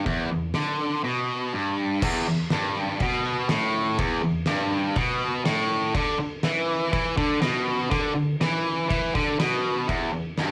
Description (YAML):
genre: garage rock duo or trio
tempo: 122 BPM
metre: 4/4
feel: straight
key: unclear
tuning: A4 = 440 Hz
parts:
  - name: overdriven electric guitar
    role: riff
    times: 0.0-10.5 s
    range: E2 to E3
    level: -26 LUFS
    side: equal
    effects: cassette tape
  - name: oversized low-tuned drum kit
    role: drums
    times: 0.1-10.5 s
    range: crash cymbal, kick drum, snare drum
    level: -32 LUFS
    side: equal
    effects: cassette tape
room: light reverb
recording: home recording on cassette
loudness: -25 LUFS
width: mono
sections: 0.0-2.0 A section; 2.0-9.9 B section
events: none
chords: none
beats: | 0.07 0.56 1.05 1.54 | 2.03 2.52 3.01 3.50 | 3.99 4.48 4.97 5.46 | 5.95 6.44 6.93 7.42 | 7.91 8.40 8.89 9.39 | 9.88 10.37